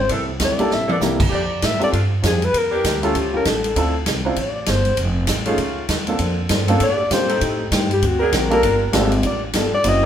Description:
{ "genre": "jazz, big band swing", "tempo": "197 BPM", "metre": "4/4", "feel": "swing 61% on 8ths", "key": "F major", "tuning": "A4 = 440 Hz", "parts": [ { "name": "mellow alto saxophone", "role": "melody", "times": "0.0-10.1 s", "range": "F4 to E5", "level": "-21 LUFS", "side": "left 2 dB", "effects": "none" }, { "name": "upright bass", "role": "bass", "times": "0.0-10.1 s", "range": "F1 to Bb2", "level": "-22 LUFS", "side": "equal", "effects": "none" }, { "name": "hollow-body jazz guitar", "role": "accompaniment", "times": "0.1-1.2, 6.2-10.1 s", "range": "C3 to C5", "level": "-26 LUFS", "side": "left 1 dB", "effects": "none" }, { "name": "mellow saxophone section", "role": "sustained chords", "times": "0.1-3.4, 5.5-10.1 s", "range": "D3 to Bb4", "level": "-26 LUFS", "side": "right 2 dB", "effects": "none" }, { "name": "swinging big-band drum kit", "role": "drums", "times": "0.1-9.9 s", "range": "crash cymbal, hi-hat, kick drum, ride cymbal, snare drum, toms", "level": "-23 LUFS", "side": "equal", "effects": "none" }, { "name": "warm baby grand piano", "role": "accompaniment", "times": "0.6-10.0 s", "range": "A3 to C5", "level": "-23 LUFS", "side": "right 1 dB", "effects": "none" } ], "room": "wet studio reverb, RT60 0.9 s", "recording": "band playing live in one room", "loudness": "-16 LUFS", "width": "side -9 dB against mid", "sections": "0.0-1.3 A section; 1.3-10.1 A section", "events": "alto saxophone solo 0.0-10.1; drum fill 0.7-1.0", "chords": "0.1 C13; 1.3 F69; 2.5 Em7b5; 3.1 A7b13; 3.8 Dm9; 5.0 F7b13; 6.2 Bbmaj9; 7.4 Am7b5; 8.0 D7alt; 8.6 Gm7", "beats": "| 0.10 0.40 0.71 1.01 | 1.32 1.62 1.93 2.23 | 2.54 2.84 3.15 3.45 | 3.75 4.06 4.37 4.67 | 4.97 5.28 5.58 5.89 | 6.19 6.50 6.80 7.11 | 7.41 7.71 8.02 8.32 | 8.63 8.93 9.23 9.54 | 9.84" }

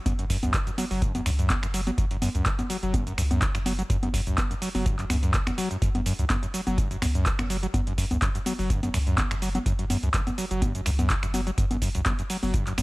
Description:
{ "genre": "acid house", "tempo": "125 BPM", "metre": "4/4", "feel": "swing 54% on 16ths", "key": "unclear", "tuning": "A4 = 444 Hz", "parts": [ { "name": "overdriven acid bass", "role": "riff", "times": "0.1-12.8 s", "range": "E2 to F#3", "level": "-29 LUFS", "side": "equal", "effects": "analog chorus, sidechain pumping, tape echo" }, { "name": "warm sub bass", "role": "bass", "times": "0.1-12.8 s", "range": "F#1 to C#2", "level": "-29 LUFS", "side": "equal", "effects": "sidechain pumping" }, { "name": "booming analog drum machine", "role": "drums", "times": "0.1-12.8 s", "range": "cabasa, congas, finger snaps, handclaps, hi-hat", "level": "-29 LUFS", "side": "equal", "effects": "none" }, { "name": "electronic kick drum", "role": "drums", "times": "0.1-12.6 s", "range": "none", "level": "-27 LUFS", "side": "equal", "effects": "none" } ], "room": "little or no reverb", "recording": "none", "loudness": "-23 LUFS", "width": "side -21 dB against mid", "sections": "0.0-12.8 A section", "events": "none", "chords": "0.0 F#5", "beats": "| 0.06 0.54 1.02 1.50 | 1.98 2.46 2.94 3.42 | 3.90 4.38 4.86 5.34 | 5.82 6.30 6.78 7.26 | 7.74 8.22 8.70 9.18 | 9.66 10.14 10.62 11.10 | 11.58 12.06 12.54" }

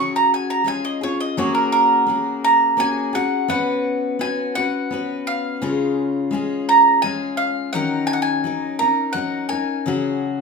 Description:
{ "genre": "acoustic folk duo or small band", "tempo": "85 BPM", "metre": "3/4", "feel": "straight", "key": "unclear", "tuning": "A4 = 440 Hz", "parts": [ { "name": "bowl-back mandolin", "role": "melody", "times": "0.0-10.4 s", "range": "A#4 to C#6", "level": "-18 LUFS", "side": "right 2 dB", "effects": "none" }, { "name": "picked steel-string acoustic guitar", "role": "accompaniment", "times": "0.0-10.4 s", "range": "C#3 to B4", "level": "-22 LUFS", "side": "left 4 dB", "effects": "none" } ], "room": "moderate large studio reverb, RT60 0.9 s", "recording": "minimal, uncompressed stereo recording", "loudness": "-17 LUFS", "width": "side -4 dB against mid", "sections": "0.0-3.5 A section; 3.5-10.4 B section", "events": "mandolin solo 0.0-3.5", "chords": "0.0 C#sus4; 0.7 C#; 1.4 F#add9; 3.5 Bsus2; 5.6 C#; 7.7 D#m7; 9.9 C#sus4", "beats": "0.66 | 1.37 2.08 2.79 | 3.50 4.21 4.91 | 5.62 6.33 7.03 | 7.74 8.44 9.15 | 9.86" }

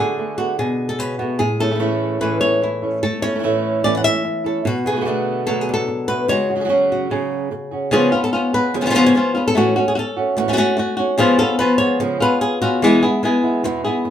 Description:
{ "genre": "flamenco", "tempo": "147 BPM", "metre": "4/4", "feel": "straight", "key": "unclear", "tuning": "A4 = 441 Hz", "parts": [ { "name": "flamenco guitar", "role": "melody", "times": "0.0-14.1 s", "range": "A2 to F#5", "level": "-17 LUFS", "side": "left 2 dB", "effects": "none" }, { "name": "flamenco guitar", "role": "stabs", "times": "0.0-14.1 s", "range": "E2 to G#4", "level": "-22 LUFS", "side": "right 4 dB", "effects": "none" } ], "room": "wet studio reverb, RT60 0.6 s", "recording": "band playing live in one room", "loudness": "-16 LUFS", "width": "side -10 dB against mid", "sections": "0.0-7.9 A section; 7.9-14.1 B section", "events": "none", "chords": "0.0 Bm7; 1.4 A; 4.7 Bm7; 6.3 C#sus4; 7.9 C#7; 9.6 A6; 11.2 C#7; 12.8 E", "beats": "0.17 0.58 0.99 | 1.40 1.80 2.21 2.62 | 3.02 3.43 3.84 4.25 | 4.66 5.07 5.47 5.88 | 6.29 6.70 7.11 7.51 | 7.92 8.33 8.74 9.15 | 9.55 9.96 10.37 10.78 | 11.19 11.60 12.00 12.41 | 12.82 13.23 13.64 14.04" }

